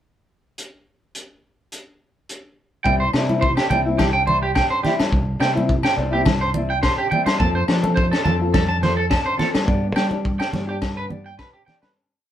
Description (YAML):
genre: highlife guitar band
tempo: 106 BPM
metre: 4/4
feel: swing 54% on 16ths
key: C major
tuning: A4 = 440 Hz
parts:
  - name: crunchy breakbeat drum kit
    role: drums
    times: 0.6-11.9 s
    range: hi-hat, kick drum, snare drum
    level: -23 LUFS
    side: equal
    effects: none
  - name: fingerpicked old ladder-braced acoustic guitar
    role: accompaniment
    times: 2.8-11.9 s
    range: F3 to A4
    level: -25 LUFS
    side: left 2 dB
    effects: none
  - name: electric guitar at the edge of break-up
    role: arpeggios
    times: 2.8-11.9 s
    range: G4 to A5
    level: -22 LUFS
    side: right 3 dB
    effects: none
  - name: fingered electric bass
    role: bass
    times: 2.9-11.4 s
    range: C2 to G3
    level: -24 LUFS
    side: equal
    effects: none
  - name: agogo bells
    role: percussion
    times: 3.1-12.0 s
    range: none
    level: -30 LUFS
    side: left 10 dB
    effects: none
  - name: congas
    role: percussion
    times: 3.3-11.9 s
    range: none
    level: -25 LUFS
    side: right 2 dB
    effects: none
room: moderate studio ambience, RT60 0.5 s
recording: band playing live in one room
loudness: -17 LUFS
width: side -11 dB against mid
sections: 0.6-2.8 pickup bar; 2.8-12.0 groove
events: fade-out 9.7-12.0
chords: 0.6 N.C.; 2.8 C; 7.4 F; 9.7 G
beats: | 0.57 1.14 1.71 2.28 | 2.85 3.42 3.99 4.55 | 5.12 5.69 6.26 6.83 | 7.40 7.97 8.54 9.11 | 9.68 10.24 10.81 11.38